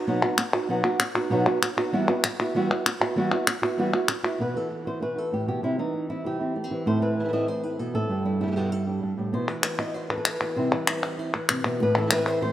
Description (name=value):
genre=flamenco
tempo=194 BPM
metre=4/4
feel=straight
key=B phrygian dominant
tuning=A4 = 436 Hz
part: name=flamenco guitar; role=melody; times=0.0-12.5 s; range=G2 to D#5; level=-25 LUFS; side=equal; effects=none
part: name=palmas hand claps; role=percussion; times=0.2-4.4, 9.5-12.4 s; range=none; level=-25 LUFS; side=left 2 dB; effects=none
part: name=flamenco guitar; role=stabs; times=4.4-12.5 s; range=G2 to G4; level=-32 LUFS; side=right 3 dB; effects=none
room=moderate lush hall reverb, RT60 2.6 s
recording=rough home demo mix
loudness=-23 LUFS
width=side -12 dB against mid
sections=0.0-4.4 A section; 4.4-12.5 B section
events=none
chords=0.0 B; 1.9 Emadd9; 4.4 Bsus4; 5.6 C; 6.9 Am; 8.1 G; 9.3 Bsus4; 10.6 C; 11.8 Am